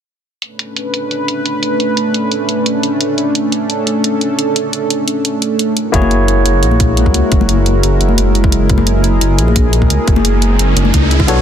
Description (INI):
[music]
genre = liquid drum and bass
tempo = 174 BPM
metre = 4/4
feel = straight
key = B dorian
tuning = A4 = 440 Hz
[part]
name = warm analog pad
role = sustained chords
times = 0.4-11.4 s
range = G#3 to B4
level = -16 LUFS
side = right 1 dB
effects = chorus, sidechain pumping
[part]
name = electronic hi-hat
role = drums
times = 0.4-11.4 s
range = none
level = -19 LUFS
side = right 1 dB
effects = low-pass filter on hats, low-pass filter on room
[part]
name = barky tine electric piano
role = accompaniment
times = 5.9-11.4 s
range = A#3 to C#5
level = -18 LUFS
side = moving between left 6 dB and right 3 dB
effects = auto-pan, tape echo
[part]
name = dark detuned saw bass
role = bass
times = 5.9-11.4 s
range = F#1 to C#2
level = -13 LUFS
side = equal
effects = none
[part]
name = electronic kick drum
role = drums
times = 5.9-11.3 s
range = none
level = -14 LUFS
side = equal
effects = none
[part]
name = congas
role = percussion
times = 6.0-10.9 s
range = none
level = -21 LUFS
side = left 4 dB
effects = none
[part]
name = riser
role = sound effects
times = 9.7-11.4 s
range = none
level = -21 LUFS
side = right 1 dB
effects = none
[sound]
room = light reverb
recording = dense, heavily limited modern master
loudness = -11 LUFS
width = side -9 dB against mid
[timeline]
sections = 0.4-11.4 A section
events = riser 9.7-11.4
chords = 0.4 Bm9; 5.8 F#9